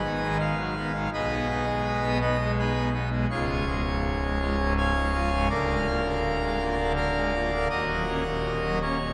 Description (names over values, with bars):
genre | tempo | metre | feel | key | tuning
classical, chorale-style piece for pipe organ | 82 BPM | 3/4 | rubato | Db major from 3.3 s | A4 = 437 Hz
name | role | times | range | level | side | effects
pipe organ, full organ | solo | 0.0-9.1 s | Db1 to Ab5 | -26 LUFS | equal | none
room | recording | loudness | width
wet cathedral reverb, RT60 5.5 s | none | -26 LUFS | mono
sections
0.0-9.1 A section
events
none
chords
0.0 G#m7; 1.1 G#m/B; 3.3 Db; 5.5 Bb7/D; 7.7 Ebm7